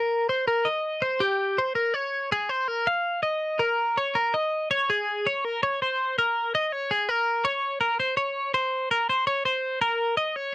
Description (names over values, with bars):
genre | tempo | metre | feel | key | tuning
rock | 164 BPM | 5/4 | straight | unclear | A4 = 440 Hz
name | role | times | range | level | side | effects
twelve-string electric guitar | solo | 0.0-10.5 s | G4 to F5 | -23 LUFS | equal | none
room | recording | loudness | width
little or no reverb | dry, close 1970s-style studio recording | -23 LUFS | side -18 dB against mid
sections
0.0-5.6 A section; 5.6-10.5 B section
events
none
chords
none